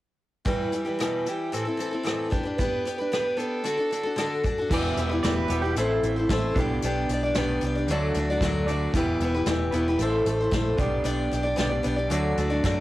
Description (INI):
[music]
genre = folk rock and heartland rock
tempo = 113 BPM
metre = 4/4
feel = straight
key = E minor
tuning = A4 = 440 Hz
[part]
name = picked steel-string acoustic guitar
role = accompaniment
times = 0.4-12.8 s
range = E2 to D5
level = -26 LUFS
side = left 2 dB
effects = cassette tape
[part]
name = dark fiddle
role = melody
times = 0.5-4.4 s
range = G4 to B4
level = -31 LUFS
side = right 4 dB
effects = cassette tape, analog delay
[part]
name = soft brush drum kit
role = drums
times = 0.5-12.8 s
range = crash cymbal, hi-hat, kick drum, rim click, snare drum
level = -30 LUFS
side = equal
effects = cassette tape
[part]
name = pedal steel guitar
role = second line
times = 4.7-7.3 s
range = E4 to E5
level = -34 LUFS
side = right 7 dB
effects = cassette tape
[part]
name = electric guitar through a small old amp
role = riff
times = 4.7-12.8 s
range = E2 to D5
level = -30 LUFS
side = right 2 dB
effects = cassette tape
[part]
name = hollow-body short-scale fingered electric bass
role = bass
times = 4.7-12.8 s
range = E1 to F#2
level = -28 LUFS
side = equal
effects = none
[sound]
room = light reverb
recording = home recording on cassette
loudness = -23 LUFS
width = side -16 dB against mid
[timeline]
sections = 0.5-4.7 A section; 4.7-12.8 B section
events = none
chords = 0.5 Em; 1.5 Am; 2.3 G/B; 3.6 D; 4.7 Em; 5.8 Am; 6.6 G/B; 7.9 D; 8.9 Em; 10.0 Am; 10.8 G/B; 12.1 D